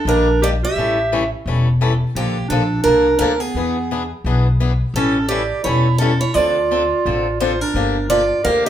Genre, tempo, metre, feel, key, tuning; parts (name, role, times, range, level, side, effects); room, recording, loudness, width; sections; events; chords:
acoustic string swing (jazz manouche); 172 BPM; 4/4; swing 60% on 8ths; D minor; A4 = 441 Hz
picked steel-string acoustic guitar; melody; 0.0-8.7 s; G4 to F5; -19 LUFS; right 2 dB
clear clarinet; second line; 0.0-8.7 s; Bb3 to Bb4; -21 LUFS; right 3 dB
picked swing-style acoustic guitar; accompaniment; 0.1-8.7 s; D3 to A4; -23 LUFS; left 6 dB
upright bass; bass; 0.1-8.7 s; E1 to E2; -20 LUFS; left 1 dB
wet large studio reverb, RT60 0.9 s; band playing live in one room; -15 LUFS; side -10 dB against mid
0.0-7.8 A section
0.0 Ebmaj7; 0.8 A7; 2.2 Bbmaj7; 3.6 E7; 5.0 A7; 6.4 Dm7; 7.8 Gm7